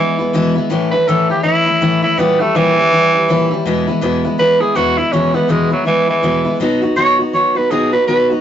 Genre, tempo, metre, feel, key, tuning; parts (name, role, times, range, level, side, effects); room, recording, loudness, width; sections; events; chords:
rock; 163 BPM; 4/4; swing 60% on 8ths; E major; A4 = 440 Hz
raspy tenor saxophone; melody; 0.0-8.3 s; E3 to C#5; -14 LUFS; right 2 dB
picked steel-string acoustic guitar; accompaniment; 0.0-8.4 s; E2 to F#4; -16 LUFS; left 2 dB
moderate studio reverb, RT60 0.6 s; rough rehearsal-room recording, warm saturation, nothing above 7.8 kHz; -12 LUFS; side -10 dB against mid
0.0-8.4 A section
tenor saxophone solo 0.0-8.4
0.0 E; 0.7 A; 2.2 A#dim7; 3.7 E; 6.6 B